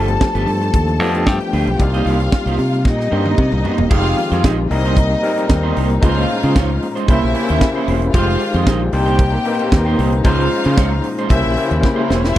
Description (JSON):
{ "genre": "disco", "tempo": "114 BPM", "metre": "4/4", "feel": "straight", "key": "unclear", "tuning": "A4 = 441 Hz", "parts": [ { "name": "rich symphonic string section", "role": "second line", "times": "0.0-12.4 s", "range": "G3 to A5", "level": "-22 LUFS", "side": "left 1 dB", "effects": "none" }, { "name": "electric guitar at the edge of break-up", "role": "accompaniment", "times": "0.0-12.4 s", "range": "G3 to Eb5", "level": "-24 LUFS", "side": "right 9 dB", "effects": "none" }, { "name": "overdriven tine electric piano", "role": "accompaniment", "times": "0.0-12.4 s", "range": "F3 to C5", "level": "-21 LUFS", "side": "left 3 dB", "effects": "fast tremolo" }, { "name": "modern bright fingered electric bass", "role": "bass", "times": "0.0-12.3 s", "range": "E1 to Db3", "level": "-18 LUFS", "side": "equal", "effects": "none" }, { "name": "tight funk drum kit", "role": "drums", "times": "0.1-12.4 s", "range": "crash cymbal, hi-hat, kick drum, snare drum, toms", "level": "-16 LUFS", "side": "equal", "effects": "none" }, { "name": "dark studio string section", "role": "sustained chords", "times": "3.9-12.4 s", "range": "Bb2 to F4", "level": "-24 LUFS", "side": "left 3 dB", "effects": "none" } ], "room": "little or no reverb", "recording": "dry, close 1970s-style studio recording", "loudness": "-14 LUFS", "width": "side -13 dB against mid", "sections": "0.0-3.9 A section; 3.9-12.4 B section", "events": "drum fill 2.9-3.9, 11.8-12.4", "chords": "0.0 G7; 1.8 Cm7; 3.9 Fm7; 4.7 Cm7; 6.0 Dbmaj9; 7.1 C7b9; 8.1 Fm7; 8.9 Cm7; 10.2 Dbmaj9; 11.3 C7b9", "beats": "0.21 0.74 1.27 | 1.80 2.33 2.86 3.38 | 3.91 4.44 4.97 5.50 | 6.03 6.55 7.08 7.61 | 8.14 8.67 9.19 9.72 | 10.25 10.78 11.31 11.84 | 12.36" }